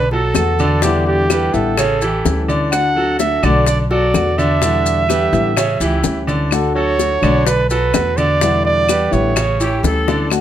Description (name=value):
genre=latin, Cuban son and guajira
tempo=127 BPM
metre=4/4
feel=straight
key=unclear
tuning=A4 = 440 Hz
part: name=clear flugelhorn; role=melody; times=0.0-9.8 s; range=G4 to F#5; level=-18 LUFS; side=right 4 dB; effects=none
part: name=bright grand piano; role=arpeggios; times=0.0-10.3 s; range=C#3 to D5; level=-19 LUFS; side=equal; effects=none
part: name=upright bass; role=bass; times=0.0-10.4 s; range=A1 to E2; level=-20 LUFS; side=equal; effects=none
part: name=bongos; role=percussion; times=0.1-10.4 s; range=none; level=-22 LUFS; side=left 8 dB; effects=none
part: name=maracas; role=percussion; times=0.3-10.4 s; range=none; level=-26 LUFS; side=left 5 dB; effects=none
part: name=nylon-string guitar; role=accompaniment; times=0.4-10.4 s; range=B2 to F#4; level=-21 LUFS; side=left 4 dB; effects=none
part: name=claves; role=percussion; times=0.4-10.4 s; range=none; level=-27 LUFS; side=equal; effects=none
part: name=breathy bright jazz flute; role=second line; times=9.6-10.3 s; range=G4 to A4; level=-22 LUFS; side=left 2 dB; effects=none
room=moderate studio reverb, RT60 0.7 s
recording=none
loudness=-13 LUFS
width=side -11 dB against mid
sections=0.0-10.3 A section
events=drum fill 10.1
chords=0.0 Bm7; 0.8 Em7; 1.8 A7; 2.7 D; 3.7 Bm7; 4.6 Em7; 5.6 A7; 6.5 D; 7.5 Bm7; 8.4 Em7; 9.4 A7